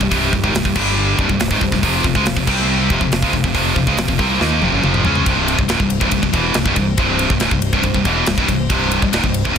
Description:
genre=heavy metal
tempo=140 BPM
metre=4/4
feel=straight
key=C major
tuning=A4 = 440 Hz
part: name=rich studio string section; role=sustained chords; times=0.0-9.6 s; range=C3 to F5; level=-31 LUFS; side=right 3 dB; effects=none
part: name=scooped high-gain guitar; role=riff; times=0.0-9.6 s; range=C2 to Eb4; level=-19 LUFS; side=left 10 dB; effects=distortion
part: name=scooped high-gain guitar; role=riff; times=0.0-9.6 s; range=C2 to Eb4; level=-19 LUFS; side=right 11 dB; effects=distortion
part: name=growling fingered electric bass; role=bass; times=0.0-9.6 s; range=C1 to Eb2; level=-23 LUFS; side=equal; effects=overdrive
part: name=tight metal drum kit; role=drums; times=0.0-9.6 s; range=crash cymbal, hi-hat, kick drum, ride cymbal, snare drum, toms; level=-20 LUFS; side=equal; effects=none
room=small room ambience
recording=dense, heavily limited modern master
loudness=-14 LUFS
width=side -7 dB against mid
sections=0.0-5.3 A section; 5.3-9.6 B section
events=drum fill 4.4-5.3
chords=0.0 C; 0.8 G5; 1.2 C; 1.8 F5; 2.5 C5; 2.9 F5; 5.3 C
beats=| 0.11 0.54 0.97 1.40 | 1.83 2.26 2.69 3.12 | 3.55 3.98 4.41 4.83 | 5.26 5.69 6.12 6.55 | 6.98 7.41 7.84 8.27 | 8.70 9.13 9.56

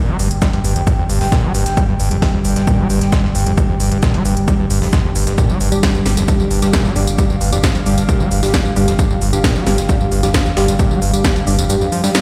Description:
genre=driving peak-time techno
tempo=133 BPM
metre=4/4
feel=straight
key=unclear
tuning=A4 = 440 Hz
part: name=screaming distorted acid line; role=riff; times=0.0-12.2 s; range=F2 to G3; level=-22 LUFS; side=equal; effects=distortion, chorus, vintage 12-bit sampler grit, sidechain pumping, delay
part: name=metallic inharmonic drone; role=drone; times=0.1-12.2 s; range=G2 to G3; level=-26 LUFS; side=equal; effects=chorus, built-in reverb, sidechain pumping
part: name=deep dark ambient pad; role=texture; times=0.3-12.2 s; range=F5 to G5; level=-30 LUFS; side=equal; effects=chorus, built-in reverb, sidechain pumping
part: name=warm sub bass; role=bass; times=0.2-11.7 s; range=G1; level=-23 LUFS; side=equal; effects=overdrive, sidechain pumping, low-pass filter
part: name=breakbeat sampler-style drum kit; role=drums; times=0.2-12.2 s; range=hi-hat, shaker, snare drum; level=-31 LUFS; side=equal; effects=high-pass filter on snare, high-pass filter on perc, high-pass filter on hats, high-pass filter on room
part: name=techno drum kit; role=drums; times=0.2-12.2 s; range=hi-hat, snare drum, tambourine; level=-24 LUFS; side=equal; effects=sidechain pumping on hats, sidechain pumping on cymbals, sidechain pumping on perc
part: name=electronic kick drum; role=drums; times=0.4-11.3 s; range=none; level=-19 LUFS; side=equal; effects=none
part: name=wavetable chord stab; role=stabs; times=5.4-12.2 s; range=G3 to G4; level=-23 LUFS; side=equal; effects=sidechain pumping, delay
room=light reverb, digital ambience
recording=played on a big sound system in a bare room, stone room reverb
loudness=-15 LUFS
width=mono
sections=0.0-12.2 A section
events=none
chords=0.0 G5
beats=0.42 0.87 1.32 | 1.77 2.22 2.67 3.12 | 3.58 4.03 4.48 4.93 | 5.38 5.83 6.28 6.73 | 7.18 7.64 8.09 8.54 | 8.99 9.44 9.89 10.34 | 10.79 11.24 11.70 12.15

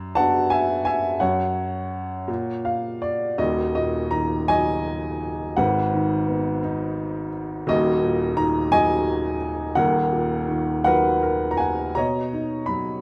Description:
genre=classical, lyrical solo piano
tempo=56 BPM (dotted quarters)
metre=6/8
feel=uneven beats, rubato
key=unclear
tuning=A4 = 440 Hz
part: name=warm upright piano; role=solo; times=0.0-13.0 s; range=D#1 to B5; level=-23 LUFS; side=equal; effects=none
room=moderate recital hall reverb, RT60 1.4 s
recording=none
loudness=-23 LUFS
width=mono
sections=0.0-3.4 A section; 3.4-12.0 B section; 12.0-13.0 C section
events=upright piano fill 2.3-3.4, 10.9-12.0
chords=0.0 D6/F#; 1.2 F#5; 2.3 F#maj7/A#; 3.4 D#m; 5.6 G#m7; 7.7 D#m; 9.8 Bmaj7/D#; 12.0 Bmaj9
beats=0.16 | 1.20 2.28 | 3.39 4.50 | 5.59 6.64 | 7.68 8.72 | 9.77 10.85 | 11.96

